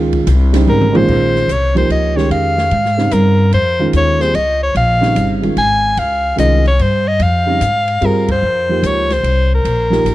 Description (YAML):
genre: modal jazz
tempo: 147 BPM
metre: 3/4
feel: swing 66% on 8ths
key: Bb dorian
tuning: A4 = 440 Hz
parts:
  - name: dark upright piano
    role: accompaniment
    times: 0.0-10.1 s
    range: Bb2 to Ab4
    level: -17 LUFS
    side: right 2 dB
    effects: none
  - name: upright bass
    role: bass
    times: 0.0-10.1 s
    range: G1 to Ab2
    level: -15 LUFS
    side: equal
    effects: none
  - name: open jazz drum kit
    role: drums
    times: 0.1-10.1 s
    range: crash cymbal, hi-hat, kick drum, ride cymbal, snare drum, toms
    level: -27 LUFS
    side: equal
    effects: none
  - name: bright soprano saxophone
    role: melody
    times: 0.7-10.1 s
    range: Bb4 to Ab5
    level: -15 LUFS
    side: left 1 dB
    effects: tape echo
room: little or no reverb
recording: dry, close 1970s-style studio recording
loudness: -11 LUFS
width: side -16 dB against mid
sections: 0.0-1.1 A section; 1.1-10.1 B section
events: drum fill 0.7-1.1; band accent 8.2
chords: 0.0 Bbm9